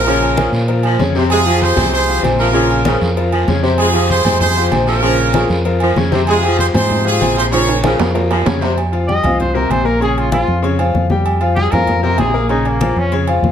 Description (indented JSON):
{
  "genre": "latin, salsa",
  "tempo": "193 BPM",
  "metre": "4/4",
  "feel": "straight",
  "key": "F minor",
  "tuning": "A4 = 440 Hz",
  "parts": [
    { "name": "brilliant horn section", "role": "melody", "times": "0.0-7.8 s", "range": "F4 to Db5", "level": "-17 LUFS", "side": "right 2 dB", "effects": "none" },
    { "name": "fingered electric bass", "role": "bass", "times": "0.0-13.5 s", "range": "Bb1 to Bb2", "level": "-17 LUFS", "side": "right 1 dB", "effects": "none" },
    { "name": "clear saxophone section", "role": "second line", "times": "0.1-8.7 s", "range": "C3 to Ab3", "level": "-20 LUFS", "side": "right 1 dB", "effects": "none" },
    { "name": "bright grand piano", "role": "accompaniment", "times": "0.1-13.5 s", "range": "C3 to Bb5", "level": "-18 LUFS", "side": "left 4 dB", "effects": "none" },
    { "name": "agogo bells and timbales", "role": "percussion", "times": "0.1-13.4 s", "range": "none", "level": "-22 LUFS", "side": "right 4 dB", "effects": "none" },
    { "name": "congas", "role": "percussion", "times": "0.1-13.5 s", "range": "none", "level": "-22 LUFS", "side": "left 2 dB", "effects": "none" },
    { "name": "guiro", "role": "percussion", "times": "0.1-8.8 s", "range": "none", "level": "-30 LUFS", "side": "right 2 dB", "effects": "none" },
    { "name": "warm trumpet", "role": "melody", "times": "9.1-13.1 s", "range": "Bb3 to Eb5", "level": "-19 LUFS", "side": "equal", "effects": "none" }
  ],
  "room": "moderate large studio reverb, RT60 1.1 s",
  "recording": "none",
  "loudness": "-12 LUFS",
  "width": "side -9 dB against mid",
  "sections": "0.0-8.8 A section; 8.8-13.5 B section",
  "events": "drum fill 7.5-8.8; trumpet solo 8.8-13.5",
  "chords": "0.1 Bbm; 1.3 Fmadd9; 2.5 Bbm; 3.8 Fmadd9; 5.0 Bbm; 6.3 Fmadd9; 7.5 Bbm; 8.8 Fsus2; 10.0 Bbm; 11.3 Fmadd9; 12.5 Bbm"
}